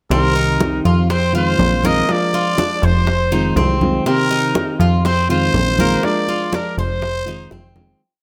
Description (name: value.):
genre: latin, Cuban son and guajira.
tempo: 122 BPM.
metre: 4/4.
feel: straight.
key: unclear.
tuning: A4 = 441 Hz.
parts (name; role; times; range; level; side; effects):
growling trumpet; melody; 0.1-7.7 s; Bb4 to Eb5; -23 LUFS; equal; none.
nylon-string guitar; accompaniment; 0.1-8.0 s; C3 to G4; -23 LUFS; equal; none.
Cuban tres; arpeggios; 0.1-8.0 s; Bb3 to C5; -25 LUFS; equal; none.
plucky analog bass; bass; 0.1-8.0 s; F1 to F2; -20 LUFS; equal; none.
bongos; percussion; 0.1-7.9 s; none; -30 LUFS; equal; none.
congas; percussion; 0.1-8.0 s; none; -26 LUFS; equal; none.
room: light reverb.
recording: none.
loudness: -17 LUFS.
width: mono.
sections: 0.1-8.0 montuno (vamp).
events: fade-out 6.0-8.0; drum fill 7.5-8.0.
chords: 0.1 Cm7; 1.1 Fm7; 2.1 Bb7; 3.1 Fm7; 4.1 Cm7; 5.1 Fm7; 6.0 Bb7; 7.0 Fm7.